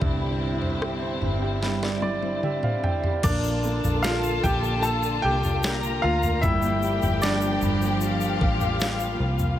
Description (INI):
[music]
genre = pop ballad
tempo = 75 BPM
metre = 4/4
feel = straight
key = unclear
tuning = A4 = 441 Hz
[part]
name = warm upright piano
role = accompaniment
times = 0.0-9.6 s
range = G2 to G5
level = -30 LUFS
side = right 5 dB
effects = none
[part]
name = warm studio string section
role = sustained chords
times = 0.0-9.6 s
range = D3 to G4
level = -31 LUFS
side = left 2 dB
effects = none
[part]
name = vintage muted fingered electric bass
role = bass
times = 0.0-9.6 s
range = G1 to D2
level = -28 LUFS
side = equal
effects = none
[part]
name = smooth R&B drum kit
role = drums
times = 0.0-9.6 s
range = crash cymbal, kick drum, rim click, snare drum, toms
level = -28 LUFS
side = equal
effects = none
[part]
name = clear grand piano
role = melody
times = 3.2-9.2 s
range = D4 to A5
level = -26 LUFS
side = left 1 dB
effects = none
[part]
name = dark studio violin section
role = second line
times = 3.2-9.6 s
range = F4 to Bb5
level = -30 LUFS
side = left 2 dB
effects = none
[part]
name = egg shaker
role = percussion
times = 3.2-9.6 s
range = none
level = -40 LUFS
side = left 7 dB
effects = none
[sound]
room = light reverb, small room ambience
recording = none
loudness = -22 LUFS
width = side -12 dB against mid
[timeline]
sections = 0.0-3.2 A section; 3.2-9.6 B section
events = drum fill 1.6-3.2; upright piano fill 1.6-3.2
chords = 0.0 Cadd9; 3.2 Bbmaj7; 6.4 Gm7